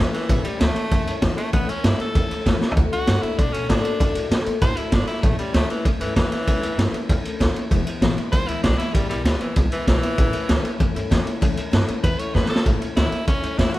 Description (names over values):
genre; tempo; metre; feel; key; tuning
rockabilly; 194 BPM; 4/4; straight; A mixolydian; A4 = 440 Hz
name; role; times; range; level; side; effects
edgy tenor saxophone; melody; 0.0-13.8 s; E3 to C#5; -27 LUFS; equal; none
picked steel-string acoustic guitar; accompaniment; 0.0-13.8 s; E2 to F#4; -28 LUFS; left 5 dB; none
upright bass; bass; 0.0-13.8 s; E1 to B2; -25 LUFS; equal; none
raw garage drum kit; drums; 0.1-13.8 s; kick drum, ride cymbal, snare drum, toms; -21 LUFS; equal; none
room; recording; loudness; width
little or no reverb; none; -18 LUFS; side -16 dB against mid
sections
0.0-12.7 A section; 12.7-13.8 B section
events
tenor saxophone solo 0.0-12.7; drum fill 2.6, 12.3-12.7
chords
0.0 A; 2.8 D; 5.2 A; 7.7 E; 10.2 A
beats
| 0.29 0.60 0.91 1.22 | 1.53 1.84 2.15 2.46 | 2.77 3.07 3.38 3.69 | 4.00 4.31 4.62 4.93 | 5.24 5.55 5.86 6.17 | 6.47 6.78 7.09 7.40 | 7.71 8.02 8.33 8.64 | 8.95 9.26 9.56 9.87 | 10.18 10.49 10.80 11.11 | 11.42 11.73 12.04 12.35 | 12.66 12.97 13.28 13.58